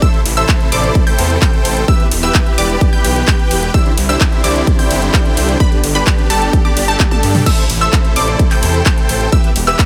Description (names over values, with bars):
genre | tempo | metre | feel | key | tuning
EDM, festival progressive house | 129 BPM | 4/4 | straight | A minor | A4 = 440 Hz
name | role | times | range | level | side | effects
muted studio string section | sustained chords | 0.0-9.9 s | C3 to G4 | -26 LUFS | equal | sidechain pumping
unison pluck | arpeggios | 0.0-9.9 s | A5 to G6 | -23 LUFS | equal | sidechain pumping, tape echo
dense compressed supersaw | riff | 0.0-9.9 s | D4 to G5 | -21 LUFS | equal | sidechain pumping, tape echo
big-room dance drum kit | drums | 0.0-9.9 s | crash cymbal, handclaps, hi-hat, ride cymbal, toms | -22 LUFS | equal | none
electronic kick drum | drums | 0.0-9.9 s | none | -15 LUFS | equal | none
detuned saw bass | bass | 0.3-9.7 s | E1 to G2 | -19 LUFS | equal | chorus, sidechain pumping
room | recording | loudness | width
light reverb, digital ambience | none | -13 LUFS | mono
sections
0.0-7.5 A section; 7.5-9.9 A section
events
drop 0.0-7.5, 7.5-9.9; drum fill 7.0-7.5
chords
0.0 Am; 1.9 Em; 3.7 Cadd9; 5.6 G; 7.5 Am; 9.3 Em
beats
| 0.02 0.49 0.95 1.42 | 1.88 2.35 2.81 3.28 | 3.74 4.21 4.67 5.14 | 5.60 6.07 6.53 7.00 | 7.46 7.93 8.39 8.86 | 9.32 9.79